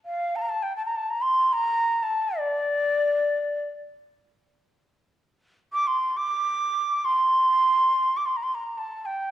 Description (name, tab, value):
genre	Turkish makam ensemble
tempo	free time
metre	none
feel	none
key	D minor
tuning	A4 = 440 Hz
part	breathy ney	solo	0.1-9.3 s	D5 to D6	-22 LUFS	equal	slapback echo
room	wet recital hall reverb, RT60 1.4 s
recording	dark, warm production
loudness	-22 LUFS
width	side -12 dB against mid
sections	0.0-5.3 A section; 5.3-9.3 A section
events	none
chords	none